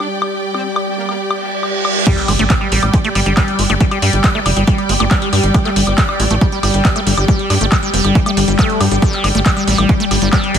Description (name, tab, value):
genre	psychedelic trance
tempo	138 BPM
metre	4/4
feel	straight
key	unclear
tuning	A4 = 439 Hz
part	metallic wobble bass	second line	0.0-1.2 s	Bb3 to D4	-32 LUFS	left 1 dB	chorus, sidechain pumping, high-pass filter, digital delay
part	evolving wavetable pad	sustained chords	0.0-10.6 s	G3	-21 LUFS	left 2 dB	ensemble chorus, built-in reverb, sidechain pumping
part	techno drum kit	drums	0.0-10.6 s	crash cymbal, handclaps, hi-hat, woodblock	-20 LUFS	equal	none
part	clear studio string section	texture	0.0-10.6 s	G4 to G5	-23 LUFS	equal	sidechain pumping
part	reverse cymbal and impact	sound effects	1.4-3.8 s	none	-22 LUFS	right 3 dB	none
part	liquid acid bass	riff	2.1-10.6 s	F3 to D4	-19 LUFS	moving between left 4 dB and right 4 dB	phaser, auto-pan, cassette tape, sidechain pumping, digital delay
part	electronic kick drum	drums	2.1-10.4 s	none	-14 LUFS	equal	none
part	tight sequencer bass	bass	2.3-10.6 s	F1 to G2	-16 LUFS	equal	none
room	light reverb, digital ambience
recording	none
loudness	-12 LUFS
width	side -8 dB against mid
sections	0.0-2.1 A section; 2.1-10.6 B section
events	filter sweep on ambient pad 0.0-2.1; reverse cymbal 1.4-2.1; drop 2.1-10.6; impact 2.1-3.8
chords	0.0 G5